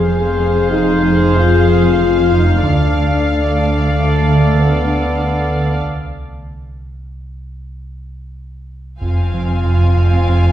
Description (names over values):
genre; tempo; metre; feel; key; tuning
cinematic, suspense film score; 94 BPM; 5/4; straight; unclear; A4 = 439 Hz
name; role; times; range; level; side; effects
dark studio violin section; melody; 0.0-10.5 s; F5 to Ab5; -24 LUFS; left 2 dB; none
warm studio viola section; accompaniment; 0.0-10.5 s; C4 to D5; -21 LUFS; right 2 dB; none
dark French horn section; sustained chords; 0.0-5.8 s; A3 to Ab4; -17 LUFS; left 5 dB; none
dark studio double bass section; bass; 0.0-10.5 s; F1 to D2; -19 LUFS; right 1 dB; none
dark symphonic cello section; bass; 0.0-10.5 s; D2 to F2; -22 LUFS; right 2 dB; none
pure sine sub bass; drone; 0.0-10.5 s; F1 to D2; -23 LUFS; equal; none
vibraphone with hard mallets; texture; 0.0-2.7, 10.3-10.5 s; none; barely audible; none; none
smooth synth bass; riff; 0.1-10.5 s; F2 to D4; -18 LUFS; right 1 dB; none
dark studio violin section; second line; 9.0-10.5 s; F5; -27 LUFS; right 1 dB; none
warm clarinet; second line; 9.0-10.5 s; F4; -24 LUFS; right 3 dB; none
room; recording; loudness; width
wet scoring stage reverb, RT60 1.7 s; heard from further back in the room; -12 LUFS; side -11 dB against mid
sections
0.0-9.0 A section; 9.0-10.5 B section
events
break 5.8-9.0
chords
0.0 Fm; 2.6 Dm; 5.8 N.C.; 9.0 Fm